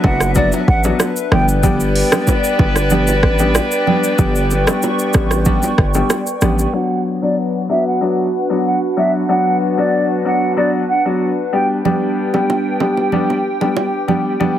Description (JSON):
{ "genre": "afrobeats", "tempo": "94 BPM", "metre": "4/4", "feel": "straight", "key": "B minor", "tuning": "A4 = 440 Hz", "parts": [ { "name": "mellow concert flute", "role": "melody", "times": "0.0-1.5, 6.7-11.7 s", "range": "D5 to G5", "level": "-19 LUFS", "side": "right 1 dB", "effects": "low-pass filter, tape echo" }, { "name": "mellow horn section", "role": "second line", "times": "0.0-6.1 s", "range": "F#3 to B4", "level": "-21 LUFS", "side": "equal", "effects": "none" }, { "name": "clear baby grand piano", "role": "accompaniment", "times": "0.0-14.6 s", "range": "F#3 to G4", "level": "-19 LUFS", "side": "left 3 dB", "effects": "low-pass filter" }, { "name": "hollow soft pad", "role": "sustained chords", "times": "0.0-14.6 s", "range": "D4 to C#6", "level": "-21 LUFS", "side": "right 1 dB", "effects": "chorus, low-pass filter" }, { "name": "hard-hitting 808-style bass", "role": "bass", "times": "0.0-6.7 s", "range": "F#1 to A1", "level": "-17 LUFS", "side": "equal", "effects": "none" }, { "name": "afro-pop drum kit", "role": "drums", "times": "0.0-6.7 s", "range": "hi-hat, kick drum, rim click, shaker", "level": "-18 LUFS", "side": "equal", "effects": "overdrive" }, { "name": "bongos and congas", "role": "percussion", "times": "0.0-6.6, 11.9-14.6 s", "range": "none", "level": "-22 LUFS", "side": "right 6 dB", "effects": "none" } ], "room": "little or no reverb", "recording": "heavily compressed radio sound", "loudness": "-13 LUFS", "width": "side -11 dB against mid", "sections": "0.0-6.7 A section; 6.7-14.6 B section", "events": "filter sweep 6.7-14.6", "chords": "0.0 Bm; 1.3 G; 6.7 Bm; 11.5 G" }